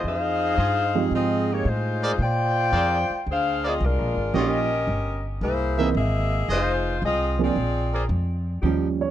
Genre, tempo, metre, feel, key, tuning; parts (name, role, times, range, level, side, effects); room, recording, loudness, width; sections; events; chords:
jazz; 112 BPM; 4/4; swing 69% on 8ths; A4 = 440 Hz
mellow saxophone section; melody; 0.0-8.1 s; Ab3 to G5; -24 LUFS; left 2 dB; tape echo
warm trumpet section; stabs; 0.0-8.0 s; F4 to E5; -28 LUFS; right 1 dB
upright bass; bass; 0.0-9.1 s; F1 to Bb2; -26 LUFS; equal
warm upright piano; accompaniment; 0.9-9.1 s; E3 to Db5; -24 LUFS; right 7 dB
warm saxophone section; sustained chords; 8.6-8.9 s; F3 to G4; -34 LUFS; left 2 dB
light reverb; dry, close 1970s-style studio recording; -21 LUFS; side -12 dB against mid
0.0-8.6 A section
0.0 Fm7; 2.2 Bb9; 4.3 Eb9; 5.4 C7alt; 6.5 Fm7; 7.6 Bb9